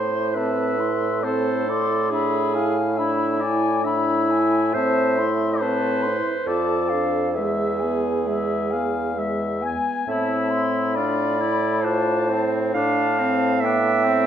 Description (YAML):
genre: classical, slow romantic movement for wind quintet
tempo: 68 BPM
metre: 3/4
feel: uneven beats, rubato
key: A minor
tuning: A4 = 439 Hz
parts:
  - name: silver concert flute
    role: melody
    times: 0.0-14.3 s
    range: E5 to C6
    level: -28 LUFS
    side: left 7 dB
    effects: none
  - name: clear clarinet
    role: accompaniment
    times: 0.0-14.3 s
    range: E4 to F5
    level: -24 LUFS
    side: right 5 dB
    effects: none
  - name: mellow French horn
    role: accompaniment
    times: 0.0-14.3 s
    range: G#3 to F4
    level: -27 LUFS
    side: left 1 dB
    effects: none
  - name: warm bassoon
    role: bass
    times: 0.0-14.3 s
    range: E2 to A2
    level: -25 LUFS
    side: right 1 dB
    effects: none
  - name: mellow oboe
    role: second line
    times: 0.3-14.3 s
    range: C4 to G#5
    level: -27 LUFS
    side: left 4 dB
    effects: none
room: moderate recital hall reverb, RT60 1.4 s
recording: dark, warm production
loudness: -19 LUFS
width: side -9 dB against mid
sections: 0.0-14.3 A section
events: none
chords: 0.0 Am; 2.1 E7/A; 4.7 Am; 6.5 Dm/F; 7.4 E; 10.1 Am; 12.7 Dm/A